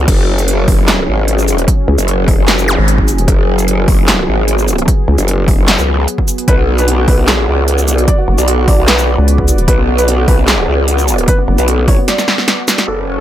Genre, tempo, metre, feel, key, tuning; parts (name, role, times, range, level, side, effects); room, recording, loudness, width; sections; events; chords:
heavy wobble dubstep; 150 BPM; 4/4; half-time; A4 = 440 Hz
lush unison pad; sustained chords; 0.0-13.2 s; F#3 to D5; -20 LUFS; equal; chorus, sidechain pumping
growl bass; bass; 0.0-13.2 s; F#1 to C#2; -13 LUFS; equal; chorus, overdrive
big-room dance drum kit; drums; 0.1-13.0 s; crash cymbal, handclaps, hi-hat, shaker, snare drum; -15 LUFS; equal; low-pass filter on hats, low-pass filter on perc, low-pass filter on snare, low-pass filter on cymbals, low-pass filter on room
electronic kick drum; drums; 0.1-12.0 s; -12 LUFS; equal
vowel-sweep wobble bass; bass; 1.9-5.2, 8.3-11.6 s; F#1 to C#2; -11 LUFS; equal; chorus, overdrive
zap; sound effects; 2.7-2.8 s; -17 LUFS; equal
felt-muted upright piano; melody; 6.5-13.2 s; B3 to D5; -18 LUFS; equal; vintage 12-bit sampler grit, dub echo
digital ambience; -9 LUFS; side -12 dB against mid
0.1-12.9 A section
drop 0.1-12.9; drum fill 12.1-12.9
0.1 F#sus2; 6.5 Bm